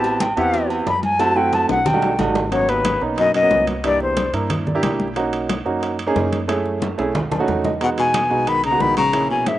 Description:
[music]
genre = Afro-Cuban jazz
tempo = 181 BPM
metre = 4/4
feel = straight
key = G# minor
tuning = A4 = 440 Hz
[part]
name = concert flute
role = melody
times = 0.0-4.3, 7.8-9.6 s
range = B4 to B5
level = -18 LUFS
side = left 2 dB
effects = slapback echo
[part]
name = warm concert grand piano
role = accompaniment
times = 0.0-9.5 s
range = G3 to A5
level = -22 LUFS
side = right 3 dB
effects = slapback echo
[part]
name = upright bass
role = bass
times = 0.0-9.6 s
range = G#1 to G2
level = -30 LUFS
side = equal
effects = none
[part]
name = agogo bells and timbales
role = percussion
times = 0.0-9.6 s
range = none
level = -28 LUFS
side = right 3 dB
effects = slapback echo
[part]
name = congas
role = percussion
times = 0.0-9.6 s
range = none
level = -27 LUFS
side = left 1 dB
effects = none
[part]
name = cowbell and bongos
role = percussion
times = 0.2-9.6 s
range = none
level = -30 LUFS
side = left 6 dB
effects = slapback echo
[part]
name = breathy baritone saxophone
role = second line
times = 2.5-4.3, 7.8-9.6 s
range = D#2 to D#3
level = -25 LUFS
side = left 4 dB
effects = slapback echo
[sound]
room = light reverb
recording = recorded outdoors, with no room sound, nothing above 10.4 kHz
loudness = -17 LUFS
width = side -14 dB against mid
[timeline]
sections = 0.0-2.5 A section; 2.5-9.6 B section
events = flute solo 0.0-2.5; drum fill 1.7-2.5, 6.8-7.8; grand piano fill 4.5-5.2, 7.2-7.8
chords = 0.0 Am9; 1.2 F#m7b5; 1.9 B7b13; 2.5 G#m11; 3.8 C9; 5.2 Bmaj7; 6.5 F#m9; 7.2 B9; 7.8 Emaj9

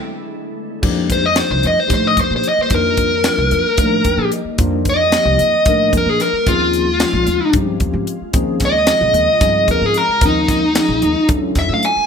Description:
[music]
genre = electric jazz fusion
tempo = 224 BPM (eighths)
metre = 7/8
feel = straight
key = unclear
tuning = A4 = 440 Hz
[part]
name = glassy FM pad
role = sustained chords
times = 0.0-12.1 s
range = Db3 to F#4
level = -28 LUFS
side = left 2 dB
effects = ensemble chorus, built-in reverb
[part]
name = tine electric piano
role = accompaniment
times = 0.8-11.9 s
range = F3 to G5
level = -22 LUFS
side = left 4 dB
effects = medium tremolo, lush chorus
[part]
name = upright bass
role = bass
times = 0.8-12.0 s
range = Bb1 to Bb2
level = -21 LUFS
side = right 1 dB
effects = none
[part]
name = tight funk drum kit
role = drums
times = 0.8-12.0 s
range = crash cymbal, hi-hat, kick drum, snare drum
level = -19 LUFS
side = equal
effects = none
[part]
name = dark smooth lead guitar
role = melody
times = 1.1-12.1 s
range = Eb4 to Ab5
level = -15 LUFS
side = equal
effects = overdrive, slapback echo
[sound]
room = light reverb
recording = none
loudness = -13 LUFS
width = side -6 dB against mid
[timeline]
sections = 0.8-12.1 A section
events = band accent 0.0-0.8; drum fill 0.0-0.8; tine electric piano fill 0.0-0.8, 3.8-4.6; lead electric guitar solo 0.8-12.1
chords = 0.0 C69 (rootless); 0.8 F13sus4; 6.5 Eb13sus4; 11.3 E13sus4

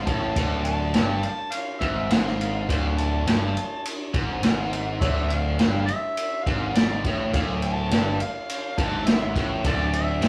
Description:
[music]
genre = blues rock power trio and southern rock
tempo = 103 BPM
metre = 4/4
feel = straight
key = D minor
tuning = A4 = 440 Hz
[part]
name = overdriven harmonica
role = melody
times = 0.0-10.3 s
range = F4 to A5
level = -32 LUFS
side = equal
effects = none
[part]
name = biting overdriven guitar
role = riff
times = 0.0-10.3 s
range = D2 to A2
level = -29 LUFS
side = equal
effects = none
[part]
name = overdriven picked electric bass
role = bass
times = 0.0-10.3 s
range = D1 to A1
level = -31 LUFS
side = equal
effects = none
[part]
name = vintage drum kit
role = drums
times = 0.1-10.3 s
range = kick drum, ride cymbal, snare drum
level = -28 LUFS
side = equal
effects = none
[sound]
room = wet studio reverb, RT60 0.7 s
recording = rough rehearsal-room recording, tube saturation, small room ambience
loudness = -24 LUFS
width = mono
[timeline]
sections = 0.0-10.3 A section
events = none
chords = 0.0 Dm

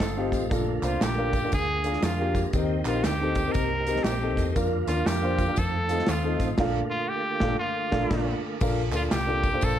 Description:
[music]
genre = uptempo gospel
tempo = 118 BPM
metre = 4/4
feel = swing 64% on 8ths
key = Bb major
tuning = A4 = 440 Hz
[part]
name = bright trumpet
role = melody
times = 0.0-9.8 s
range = F4 to Bb4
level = -30 LUFS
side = equal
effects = none
[part]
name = tonewheel organ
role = sustained chords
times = 0.0-8.6 s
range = D3 to G4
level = -34 LUFS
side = right 4 dB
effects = fast rotary speaker, chorus vibrato
[part]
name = hollow-body short-scale fingered electric bass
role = bass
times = 0.0-9.8 s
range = G1 to F2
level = -30 LUFS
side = equal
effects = none
[part]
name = modern studio drum kit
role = drums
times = 0.0-9.8 s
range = crash cymbal, hi-hat, kick drum, ride cymbal, snare drum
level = -29 LUFS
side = equal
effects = none
[part]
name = handclaps and tambourine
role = percussion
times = 0.0-9.8 s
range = none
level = -39 LUFS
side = right 1 dB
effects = none
[part]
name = warm concert grand piano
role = accompaniment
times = 0.2-9.8 s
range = Bb2 to C5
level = -29 LUFS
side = left 2 dB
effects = none
[sound]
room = light reverb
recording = none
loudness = -23 LUFS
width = side -10 dB against mid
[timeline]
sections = 0.0-8.6 A section; 8.6-9.8 A section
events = band accent 6.6-8.6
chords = 0.0 F7; 0.5 Bbmaj7; 1.5 Bb7/D; 2.5 Eb6; 4.6 Bb; 5.6 F7; 6.6 Bbmaj7

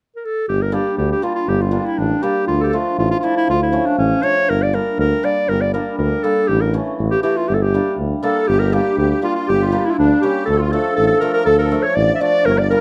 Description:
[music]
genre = klezmer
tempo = 120 BPM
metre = 2/4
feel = straight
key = G dorian sharp4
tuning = A4 = 440 Hz
[part]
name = warm clarinet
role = melody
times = 0.2-12.8 s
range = C#4 to E5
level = -20 LUFS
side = equal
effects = none
[part]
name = warm tuba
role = bass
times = 0.5-12.7 s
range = G1 to D2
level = -22 LUFS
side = equal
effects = none
[part]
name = hammered dulcimer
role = accompaniment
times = 0.7-12.8 s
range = E3 to E4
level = -24 LUFS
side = equal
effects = none
[part]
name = musette accordion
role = second line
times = 8.2-12.8 s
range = D4 to D5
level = -26 LUFS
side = equal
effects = none
[sound]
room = moderate studio reverb, RT60 0.5 s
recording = dark, warm production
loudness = -17 LUFS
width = mono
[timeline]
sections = 0.5-8.5 A section; 8.5-12.8 A section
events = none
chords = 0.5 Gm; 2.5 Dm; 4.5 Gm; 6.5 A; 7.5 Gm; 10.5 Dm

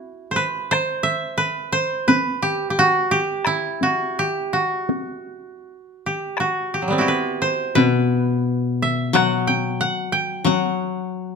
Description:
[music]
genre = japanese traditional, Japanese chamber music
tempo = 78-92 BPM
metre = 4/4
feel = rubato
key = E hirajoshi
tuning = A4 = 440 Hz
[part]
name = koto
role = melody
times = 0.0-11.4 s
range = F#3 to G5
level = -20 LUFS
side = right 2 dB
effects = none
[part]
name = taiko ensemble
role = percussion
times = 0.7-10.6 s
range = none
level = -22 LUFS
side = equal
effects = none
[part]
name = koto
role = accompaniment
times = 7.8-11.4 s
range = B2 to F#3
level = -20 LUFS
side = left 5 dB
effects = none
[sound]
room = moderate recital hall reverb, RT60 1.4 s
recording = close, detailed microphones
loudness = -18 LUFS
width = side -5 dB against mid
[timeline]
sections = 0.0-11.4 A section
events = none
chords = none

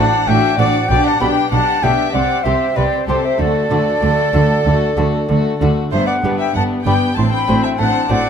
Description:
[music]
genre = classical, baroque-style concerto movement with solo episodes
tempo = 96 BPM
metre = 4/4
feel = straight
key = unclear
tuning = A4 = 440 Hz
[part]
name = mellow concert flute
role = melody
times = 0.0-8.3 s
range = C5 to C6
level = -19 LUFS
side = equal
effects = none
[part]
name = warm chamber violin section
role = melody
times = 0.0-8.3 s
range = D4 to G4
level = -26 LUFS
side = left 8 dB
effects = none
[part]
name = warm chamber violin section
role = second line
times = 0.0-8.3 s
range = A4 to A5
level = -21 LUFS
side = left 3 dB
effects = none
[part]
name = dark chamber viola section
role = accompaniment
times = 0.0-8.3 s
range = A3 to D4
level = -21 LUFS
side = left 3 dB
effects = none
[part]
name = lute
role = accompaniment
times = 0.0-8.3 s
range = G2 to D5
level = -25 LUFS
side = right 1 dB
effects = none
[part]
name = rich chamber cello section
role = bass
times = 0.0-8.2 s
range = G2 to D3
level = -21 LUFS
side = right 2 dB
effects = none
[part]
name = warm studio double bass section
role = bass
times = 0.0-8.2 s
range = G1 to D2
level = -21 LUFS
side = right 3 dB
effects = none
[sound]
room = moderate recital hall reverb, RT60 1.7 s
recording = close, detailed microphones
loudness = -13 LUFS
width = side -7 dB against mid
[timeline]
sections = 0.0-8.3 A section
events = none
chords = 0.0 D7/A; 0.9 G/B; 2.1 C5; 3.4 D; 5.9 G; 7.2 D7/A

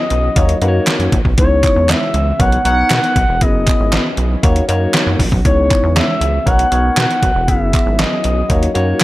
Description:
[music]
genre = early-eighties boogie funk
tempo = 118 BPM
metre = 4/4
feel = straight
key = unclear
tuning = A4 = 442 Hz
[part]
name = expressive synth lead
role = melody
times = 0.0-9.0 s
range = C#5 to F#5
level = -17 LUFS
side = left 1 dB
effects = chorus
[part]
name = barky tine electric piano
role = accompaniment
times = 0.0-9.0 s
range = A#3 to E5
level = -20 LUFS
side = left 2 dB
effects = overdrive, phaser
[part]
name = lush unison pad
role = sustained chords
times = 0.0-9.0 s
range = C#3 to D#5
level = -26 LUFS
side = right 1 dB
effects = chorus
[part]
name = rubbery square bass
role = bass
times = 0.1-8.9 s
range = E1 to B2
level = -16 LUFS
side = equal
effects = none
[part]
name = detuned 8-bit digital drum machine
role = drums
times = 0.1-9.0 s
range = handclaps, hi-hat, kick drum, snare drum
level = -16 LUFS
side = equal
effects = overdrive, gated reverb
[part]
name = group handclap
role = percussion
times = 0.9-9.0 s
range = none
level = -23 LUFS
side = right 4 dB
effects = none
[sound]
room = little or no reverb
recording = none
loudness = -12 LUFS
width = side -17 dB against mid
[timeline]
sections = 0.0-9.0 A section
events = none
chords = 0.4 D#m7; 1.4 C#m9; 2.4 Bmaj9; 3.4 F#13sus4; 4.4 D#m7; 5.4 C#m9; 6.5 Bmaj9; 7.5 F#13sus4; 8.5 D#m7

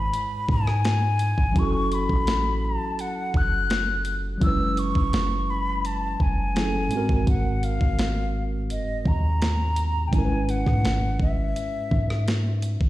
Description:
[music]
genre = contemporary R&B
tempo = 84 BPM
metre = 4/4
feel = straight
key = F# minor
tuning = A4 = 440 Hz
[part]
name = mellow hollow silver concert flute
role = melody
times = 0.0-12.6 s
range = D#5 to F#6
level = -28 LUFS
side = left 2 dB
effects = ping-pong delay
[part]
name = mellow tine electric piano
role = accompaniment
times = 0.0-12.9 s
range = G#2 to C#5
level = -29 LUFS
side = right 1 dB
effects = medium stereo tremolo
[part]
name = warm 808-style bass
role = bass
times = 0.0-12.9 s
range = F#1 to G#2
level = -25 LUFS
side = equal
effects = none
[part]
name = clean 12-bit digital drum machine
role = drums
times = 0.1-12.9 s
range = hi-hat, kick drum, rim click, snare drum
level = -26 LUFS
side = equal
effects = overdrive
[sound]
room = digital ambience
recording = played on a big sound system in a bare room, stone room reverb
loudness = -21 LUFS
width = side -16 dB against mid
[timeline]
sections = 0.0-12.9 A section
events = none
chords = 0.0 C#m7/G#; 1.6 F#m7; 6.9 G#7; 10.1 C#m7/G#

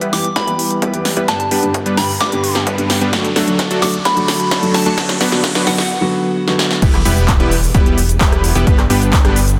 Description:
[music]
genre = EDM, festival progressive house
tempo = 130 BPM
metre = 4/4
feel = straight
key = unclear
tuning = A4 = 441 Hz
[part]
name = felt-muted upright piano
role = accompaniment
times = 0.0-6.8 s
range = G2 to G4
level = -22 LUFS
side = equal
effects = sidechain pumping, delay
[part]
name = supersaw stab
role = riff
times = 0.0-9.4 s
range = F#3 to B4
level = -21 LUFS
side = equal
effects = vintage 12-bit sampler grit, sidechain pumping, low-pass filter, delay
[part]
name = big-room dance drum kit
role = drums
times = 0.0-9.6 s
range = crash cymbal, handclaps, hi-hat, rim click, shaker, snare drum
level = -22 LUFS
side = equal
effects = high-pass filter on hats, high-pass filter on snare, high-pass filter on cymbals, high-pass filter on perc, high-pass filter on room
[part]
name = riser and impact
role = sound effects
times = 1.5-8.7 s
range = none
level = -28 LUFS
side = equal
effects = none
[part]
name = soft synth bell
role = melody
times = 0.1-5.9 s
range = F#5 to D6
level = -23 LUFS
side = equal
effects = chorus, phaser, delay
[part]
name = electronic kick drum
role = drums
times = 0.4-9.2 s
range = none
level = -18 LUFS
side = equal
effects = high-pass filter on kick, high-pass filter on room
[part]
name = fat analog bass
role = bass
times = 6.8-9.6 s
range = E1 to G1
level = -18 LUFS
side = equal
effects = sidechain pumping
[sound]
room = moderate lush hall reverb, RT60 1.9 s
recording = dense, heavily limited modern master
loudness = -15 LUFS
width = mono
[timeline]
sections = 0.0-6.8 A section; 6.8-9.6 B section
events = build-up 0.0-6.8; drum fill 0.0-5.9, 6.5-6.8; filter sweep on supersaw synth 0.0-6.8; riser 1.5-5.9; break 5.9-6.8; drop 6.8-9.6; impact 6.8-8.7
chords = 0.0 Em; 1.3 G; 3.1 D; 5.0 Bm; 6.8 Em; 8.7 G

